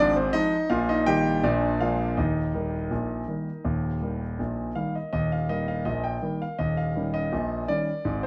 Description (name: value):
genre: ragtime piano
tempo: 82 BPM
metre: 2/4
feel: straight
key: Eb major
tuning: A4 = 442 Hz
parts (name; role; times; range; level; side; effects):
- warm concert grand piano; solo; 0.0-8.3 s; Eb1 to G5; -26 LUFS; equal; none
room: moderate large studio reverb, RT60 1.2 s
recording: band playing live in one room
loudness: -27 LUFS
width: mono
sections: 0.0-5.1 A section; 5.1-8.3 B section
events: none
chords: 0.0 Fm/Ab; 0.7 Eb/Bb; 1.4 Bb7; 2.2 Eb; 6.6 Eb7